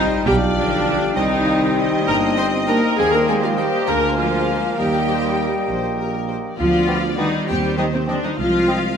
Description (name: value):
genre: cinematic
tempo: 66 BPM (dotted quarters)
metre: 6/8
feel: straight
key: C minor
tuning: A4 = 440 Hz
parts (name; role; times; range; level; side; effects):
- concert flute; second line; 0.0-8.7 s; G5 to Ab5; -29 LUFS; left 3 dB; none
- mellow clarinet; second line; 0.0-9.0 s; Eb3 to Eb4; -29 LUFS; left 2 dB; none
- mellow oboe; second line; 0.0-8.8 s; C5 to F5; -30 LUFS; equal; none
- warm studio violin section; second line; 0.0-9.0 s; C5 to C6; -29 LUFS; left 4 dB; none
- clear bassoon; accompaniment; 0.0-8.8 s; Bb3 to Eb4; -28 LUFS; right 2 dB; none
- rich studio viola section; accompaniment; 0.0-9.0 s; C4 to C5; -21 LUFS; equal; none
- dark French horn section; sustained chords; 0.0-8.8 s; G3 to F4; -26 LUFS; left 4 dB; none
- dark tuba; bass; 0.0-9.0 s; G1 to Eb2; -26 LUFS; right 4 dB; none
- rich studio cello section; bass; 0.0-9.0 s; C3 to C4; -26 LUFS; right 1 dB; none
- rich studio double bass section; bass; 0.0-9.0 s; G1 to Eb2; -29 LUFS; right 3 dB; none
- rich studio violin section; melody; 0.2-9.0 s; Bb4 to F5; -29 LUFS; left 4 dB; none
room: moderate scoring stage reverb, RT60 1.7 s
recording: none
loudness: -16 LUFS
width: side -7 dB against mid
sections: 0.0-9.0 A section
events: none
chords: 0.3 G7/B; 1.2 Cm; 3.0 Eb; 3.9 Bb7/D; 4.8 Eb; 6.6 G7/D; 7.5 Cm/Eb; 8.4 Cm